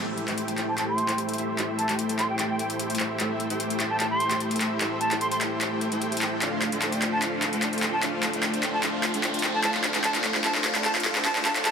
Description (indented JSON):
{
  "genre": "future bass",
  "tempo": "149 BPM",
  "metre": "4/4",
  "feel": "half-time",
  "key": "A minor",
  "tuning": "A4 = 440 Hz",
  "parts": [
    { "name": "dense compressed supersaw", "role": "riff", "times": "0.0-11.7 s", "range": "A3 to G5", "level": "-28 LUFS", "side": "equal", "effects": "low-pass filter" },
    { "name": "riser", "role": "sound effects", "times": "0.0-11.7 s", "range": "none", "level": "-38 LUFS", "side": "left 1 dB", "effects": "none" },
    { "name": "dubstep drum kit", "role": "drums", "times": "0.2-11.7 s", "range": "handclaps, hi-hat", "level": "-27 LUFS", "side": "equal", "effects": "overdrive" },
    { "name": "breathy bright concert flute", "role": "melody", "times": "0.7-11.7 s", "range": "G5 to C6", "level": "-30 LUFS", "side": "right 1 dB", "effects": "low-pass filter, dub echo" }
  ],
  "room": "moderate huge ambient reverb, RT60 7.3 s",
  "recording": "dense, heavily limited modern master, high-pass filter",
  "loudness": "-23 LUFS",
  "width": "side -6 dB against mid",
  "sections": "0.0-11.7 A section",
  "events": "build-up 0.0-11.7; drum fill 0.0-11.7; filter sweep on supersaw synth 0.0-11.7; filter sweep on flute 0.0-11.7; filter sweep 0.0-11.7",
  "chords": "0.0 Am7; 6.4 Dm7"
}